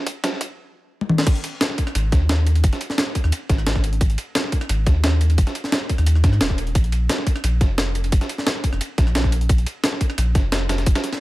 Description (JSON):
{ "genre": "liquid drum and bass", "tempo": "175 BPM", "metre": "4/4", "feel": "straight", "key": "unclear", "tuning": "A4 = 443 Hz", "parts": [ { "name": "dusty soul sampler-style drum kit", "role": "drums", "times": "0.1-11.2 s", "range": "ride cymbal, snare drum", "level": "-28 LUFS", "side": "right 1 dB", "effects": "overdrive, high-pass filter on snare, high-pass filter on cymbals, high-pass filter on room" }, { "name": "electronic kick drum", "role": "drums", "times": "0.1-10.9 s", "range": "none", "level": "-18 LUFS", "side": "equal", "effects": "high-pass filter on kick" }, { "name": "jungle sampler-style drum kit", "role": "drums", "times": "0.1-11.2 s", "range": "crash cymbal, hi-hat, rim click, snare drum, toms", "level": "-24 LUFS", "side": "equal", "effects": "overdrive" }, { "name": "warm sub bass", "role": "bass", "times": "0.5-10.9 s", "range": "D#1 to G#2", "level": "-19 LUFS", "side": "equal", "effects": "high-pass filter" } ], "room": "little or no reverb", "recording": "none", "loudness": "-18 LUFS", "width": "side -18 dB against mid", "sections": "0.0-1.3 A section; 1.3-11.2 B section", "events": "build-up 0.0-1.3; drum fill 0.0-0.6, 1.0; drop 1.3-11.2", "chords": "none" }